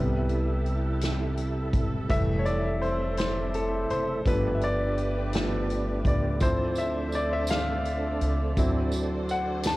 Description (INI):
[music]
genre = slow gospel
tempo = 56 BPM (dotted quarters)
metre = 6/8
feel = straight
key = unclear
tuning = A4 = 440 Hz
[part]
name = clear baby grand piano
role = accompaniment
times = 0.0-9.8 s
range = C3 to A5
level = -29 LUFS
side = left 1 dB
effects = cassette tape
[part]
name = tonewheel organ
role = sustained chords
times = 0.0-9.8 s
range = C3 to E5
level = -33 LUFS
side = right 3 dB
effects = slow rotary speaker, overdrive, chorus vibrato, cassette tape
[part]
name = warm studio string section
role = sustained chords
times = 0.0-9.8 s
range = C3 to C5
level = -39 LUFS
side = right 1 dB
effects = cassette tape
[part]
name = upright bass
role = bass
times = 0.0-9.8 s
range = E1 to D2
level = -30 LUFS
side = equal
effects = none
[part]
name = swinging big-band drum kit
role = drums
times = 0.3-9.8 s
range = hi-hat, kick drum, snare drum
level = -29 LUFS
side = equal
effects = cassette tape
[part]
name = tambourine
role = percussion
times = 6.4-9.8 s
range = none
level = -42 LUFS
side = right 4 dB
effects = none
[sound]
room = little or no reverb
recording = home recording on cassette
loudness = -24 LUFS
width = side -18 dB against mid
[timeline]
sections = 0.0-9.8 A section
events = grand piano solo 0.0-9.8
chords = 0.0 Am7/C; 2.1 Fmaj7; 4.3 G7; 6.4 Dm7; 8.6 D7